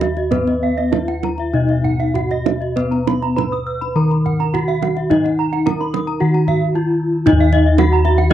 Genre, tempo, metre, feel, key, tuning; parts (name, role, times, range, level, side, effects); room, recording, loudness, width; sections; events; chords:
Balinese gamelan; 98-116 BPM; 4/4; straight; Eb pelog; A4 = 443 Hz
gamelan-type bronze metallophone; melody; 0.0-8.3 s; Cb4 to Cb5; -19 LUFS; equal
gamelan-type bronze metallophone; arpeggios; 0.0-8.3 s; Cb5 to Fb6+35c; -26 LUFS; left 6 dB; tape echo
gamelan-type bossed gongs; bass; 0.0-8.3 s; Eb2 to Cb5; -18 LUFS; left 1 dB
kendang; percussion; 0.0-8.3 s; -23 LUFS; right 9 dB
gamelan-type bronze metallophone; arpeggios; 0.6-8.3 s; Eb5 to Eb6; -24 LUFS; right 9 dB
little or no reverb; dry, close 1970s-style studio recording; -14 LUFS; side -11 dB against mid
0.0-7.3 A section; 7.3-8.3 B section